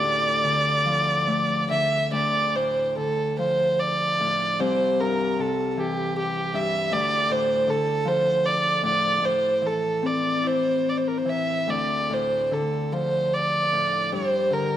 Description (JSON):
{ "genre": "celtic folk, Celtic slow air", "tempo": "46-53 BPM (dotted quarters)", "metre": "6/8", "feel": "rubato", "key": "D minor", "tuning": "A4 = 440 Hz", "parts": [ { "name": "dark fiddle", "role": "melody", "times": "0.0-14.8 s", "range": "G4 to E5", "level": "-22 LUFS", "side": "right 1 dB", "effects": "none" }, { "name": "Celtic harp", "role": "accompaniment", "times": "0.0-14.8 s", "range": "C2 to G4", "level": "-27 LUFS", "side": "left 3 dB", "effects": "none" } ], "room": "moderate concert hall reverb, RT60 1.8 s", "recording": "none", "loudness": "-21 LUFS", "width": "side -11 dB against mid", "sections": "0.0-2.1 A section; 2.1-14.8 B section", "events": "none", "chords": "0.0 Dm; 4.6 C; 6.9 Dm; 9.2 Am; 11.7 Dm; 14.1 Gm" }